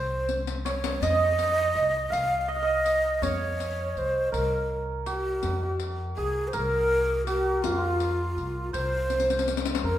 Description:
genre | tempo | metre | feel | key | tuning
Persian modal ensemble | 54 BPM (dotted quarters) | 6/8 | straight | F dastgah shur | A4 = 440 Hz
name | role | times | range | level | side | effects
breathy ney | melody | 0.0-10.0 s | F4 to F5 | -27 LUFS | equal | none
santur | second line | 0.0-10.0 s | F4 to F5 | -31 LUFS | right 4 dB | none
upright bass | bass | 0.0-10.0 s | C2 to F2 | -31 LUFS | equal | none
riq | percussion | 0.3-9.8 s | none | -34 LUFS | left 6 dB | none
room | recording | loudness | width
wet recital hall reverb, RT60 1.4 s | minimal, uncompressed stereo recording | -24 LUFS | side -12 dB against mid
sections
0.0-9.8 A section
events
drum fill 0.3-1.0, 9.1-9.8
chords
none

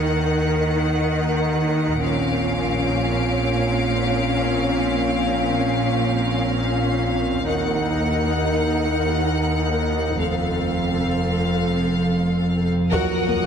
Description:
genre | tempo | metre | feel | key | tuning
cinematic, suspense film score | free time | none | none | Bb harmonic minor | A4 = 440 Hz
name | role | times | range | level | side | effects
rich symphonic violin section | melody | 0.0-13.5 s | F5 to Gb5 | -27 LUFS | left 4 dB | none
warm symphonic viola section | accompaniment | 0.0-13.5 s | Bb3 to Bb4 | -24 LUFS | left 1 dB | none
rich symphonic cello section | bass | 0.0-12.7 s | Eb2 to Eb3 | -26 LUFS | right 2 dB | none
rich symphonic double bass section | bass | 0.0-13.5 s | F1 to Eb2 | -28 LUFS | right 3 dB | none
deep rumbling drone | drone | 0.0-13.5 s | Bb1 to F2 | -26 LUFS | equal | built-in reverb
warm symphonic violin section | texture | 2.0-7.1, 12.9-13.5 s | Db5 to D7 | -31 LUFS | left 4 dB | none
rich symphonic violin section | second line | 12.9-13.5 s | Bb4 | -25 LUFS | left 2 dB | none
warm trombone section | sustained chords | 12.9-13.5 s | Bb2 to Gb3 | -26 LUFS | right 2 dB | none
taiko ensemble | drums | 12.9-13.5 s | none | -31 LUFS | left 2 dB | none
room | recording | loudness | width
wet concert hall reverb, RT60 2.5 s | heavily compressed radio sound, multiband compression | -19 LUFS | side -7 dB against mid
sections
0.0-12.9 A section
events
band accent 12.9-13.5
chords
0.0 Ebm; 2.0 Bbmadd9; 7.5 Ebm; 10.2 F; 12.9 Ebm

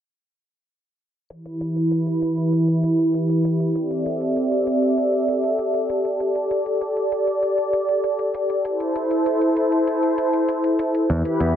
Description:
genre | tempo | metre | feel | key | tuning
synthwave | 98 BPM | 4/4 | straight | E minor | A4 = 436 Hz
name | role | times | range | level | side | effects
warm analog pad | sustained chords | 1.3-11.6 s | E3 to B5 | -19 LUFS | equal | wide subtle chorus
electronic hi-hat | drums | 1.3-11.5 s | none | -43 LUFS | left 2 dB | overdrive
picked electric bass | bass | 11.1-11.5 s | E2 | -19 LUFS | equal | none
room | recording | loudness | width
moderate plate reverb, RT60 1.9 s, digital ambience | low-pass filter | -19 LUFS | side -9 dB against mid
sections
1.3-11.6 A section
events
filter sweep on analog synth pad 1.3-11.6; filter sweep 1.3-11.6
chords
1.3 Em; 3.8 C6; 6.2 Gsus2; 8.6 Am

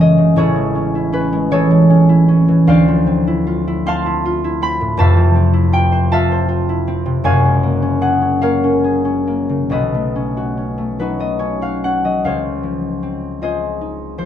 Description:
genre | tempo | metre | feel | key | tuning
classical, solo harp piece | 45-54 BPM (dotted quarters) | 6/8 | rubato | unclear | A4 = 442 Hz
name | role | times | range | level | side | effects
concert harp | solo | 0.0-14.3 s | F1 to C6 | -13 LUFS | equal | none
room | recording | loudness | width
light reverb | dark, warm production | -13 LUFS | side -10 dB against mid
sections
0.0-12.2 A section; 12.2-14.3 B section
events
none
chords
0.4 Amaj7; 2.7 Dm9; 5.0 Fmaj7; 7.2 Gbmaj9; 9.7 Cb9; 12.2 Dbmaj9

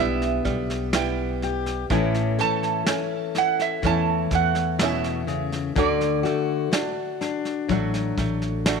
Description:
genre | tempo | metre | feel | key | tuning
acoustic folk duo or small band | 62 BPM | 4/4 | straight | D major | A4 = 444 Hz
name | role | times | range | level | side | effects
metal-body resonator slide guitar | second line | 0.0-8.6 s | D5 to A5 | -26 LUFS | right 13 dB | none
fingerpicked steel-string acoustic guitar | accompaniment | 0.0-8.8 s | A2 to A4 | -26 LUFS | left 10 dB | none
open-back banjo | arpeggios | 0.0-8.8 s | D3 to F#4 | -29 LUFS | right 10 dB | none
upright bass | bass | 0.0-8.8 s | A1 to E2 | -28 LUFS | equal | none
soft brush drum kit | drums | 0.2-8.8 s | kick drum, snare drum | -29 LUFS | equal | none
room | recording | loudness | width
light reverb | 1960s-style stereo with parts hard left and right | -21 LUFS | side -5 dB against mid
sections
0.0-8.8 A section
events
resonator guitar played with a steel bar solo 0.0-8.8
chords
0.0 Em7; 1.9 A; 5.8 D

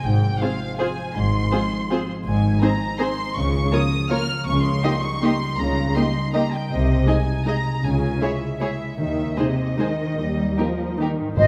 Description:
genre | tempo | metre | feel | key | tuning
classical, orchestral ballroom waltz | 144-176 BPM | 3/4 | rubato | Ab major | A4 = 440 Hz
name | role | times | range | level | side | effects
muted symphonic violin section | melody | 0.0-11.0 s | Eb5 to F6 | -31 LUFS | equal | none
concert harp | arpeggios | 0.0-11.5 s | Ab2 to C5 | -29 LUFS | equal | none
muted symphonic cello section | bass | 0.0-11.5 s | Ab2 to G3 | -27 LUFS | equal | none
muted symphonic double bass section | bass | 0.0-11.5 s | Ab1 to Eb2 | -29 LUFS | equal | none
muted chamber violin section | second line | 0.4-11.5 s | G4 to Eb5 | -32 LUFS | equal | none
muted symphonic viola section | accompaniment | 0.4-11.1 s | Ab3 to F4 | -29 LUFS | equal | none
silver concert flute | second line | 11.4-11.5 s | Eb5 | -16 LUFS | equal | none
timpani | percussion | 11.4-11.5 s | Ab2 | -20 LUFS | equal | none
room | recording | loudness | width
moderate scoring stage reverb, RT60 1.8 s | none | -22 LUFS | mono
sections
0.0-11.4 A section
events
none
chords
0.0 Fm/Ab; 2.3 Ab; 3.4 Bbm/Db; 4.5 Eb7/Db; 6.7 Ab/C; 7.8 Dbm; 9.0 Ab/Eb; 10.2 Eb

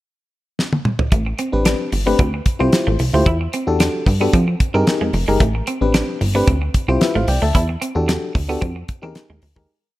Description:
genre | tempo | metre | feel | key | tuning
early-eighties boogie funk | 112 BPM | 4/4 | straight | A minor | A4 = 440 Hz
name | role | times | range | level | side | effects
damped 70s drum kit | drums | 0.6-9.7 s | hi-hat, kick drum, snare drum, toms | -19 LUFS | equal | none
electric guitar at the edge of break-up | riff | 1.1-9.7 s | Ab3 to E4 | -25 LUFS | right 3 dB | wide subtle chorus
plucky analog bass | bass | 1.1-9.7 s | F1 to F3 | -19 LUFS | equal | none
FM electric piano with auto-pan | accompaniment | 1.5-9.7 s | C4 to A5 | -21 LUFS | left 2 dB | none
room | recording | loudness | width
light reverb, studio reverb | none | -15 LUFS | side -16 dB against mid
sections
0.0-1.1 pickup bar; 1.1-9.7 verse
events
drum fill 0.6-1.1; fade-out 7.5-9.7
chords
0.0 N.C.; 1.1 Am11; 2.2 Dm11; 3.3 Em11; 4.3 Fm11; 5.4 Am11; 6.5 Dm11; 7.5 Em11; 8.6 Fm11

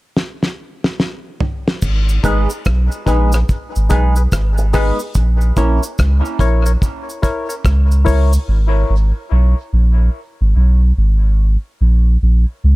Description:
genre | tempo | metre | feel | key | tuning
dub reggae | 72 BPM | 4/4 | swing 63% on 16ths | G# minor | A4 = 438 Hz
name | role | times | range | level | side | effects
damped 70s drum kit | drums | 0.2-8.3 s | crash cymbal, hi-hat, kick drum, rim click, snare drum, toms | -18 LUFS | equal | none
soft dub sub bass | bass | 1.8-12.8 s | G#1 to C#2 | -12 LUFS | equal | none
cabasa | percussion | 1.8-8.5 s | none | -33 LUFS | right 2 dB | dub echo
electric guitar with an envelope filter | accompaniment | 2.2-5.8 s | G#3 to A#4 | -24 LUFS | right 4 dB | phaser, dub echo
percussive organ stab | stabs | 2.2-8.3 s | D#4 to C#5 | -23 LUFS | left 4 dB | chorus, dub echo
room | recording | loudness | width
studio ambience | none | -13 LUFS | side -20 dB against mid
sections
0.0-1.8 A section; 1.8-12.8 B section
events
drum fill 0.2-1.8; part muted 8.5-12.8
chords
0.0 N.C.; 1.8 G#m; 5.1 A#dim; 8.5 G#m; 11.8 G#sus4 (rootless)

